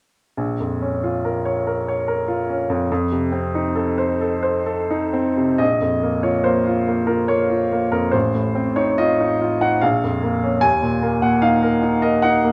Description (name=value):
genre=classical, romantic character piece for solo piano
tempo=62-75 BPM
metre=3/4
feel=rubato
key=Bb minor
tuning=A4 = 441 Hz
part: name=clear upright piano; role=solo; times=0.4-12.5 s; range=A1 to Ab5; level=-20 LUFS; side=equal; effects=none
room=light reverb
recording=close, detailed microphones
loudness=-20 LUFS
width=mono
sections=0.4-5.6 A section; 5.6-12.5 B section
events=none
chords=0.4 Bbm; 2.9 F7; 5.6 Bb5; 8.1 F7/A; 9.8 Bbm; 10.6 Eb5